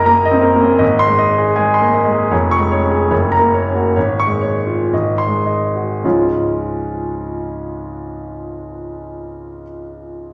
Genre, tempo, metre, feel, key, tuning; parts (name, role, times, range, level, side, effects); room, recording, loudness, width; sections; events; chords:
classical, romantic character piece for solo piano; 52-81 BPM; 2/4; rubato; Db major; A4 = 440 Hz
clear concert grand piano; solo; 0.0-10.3 s; F1 to Db6; -16 LUFS; equal
wet recital hall reverb, RT60 1.5 s; -15 LUFS; mono
0.0-6.0 A section; 6.0-10.3 B section
slowing down 1.6-6.0
0.0 Ebm/Gb; 0.8 Ab; 2.3 Db/F; 3.1 Gb; 4.0 Db/Ab; 4.9 Ab7; 6.0 Db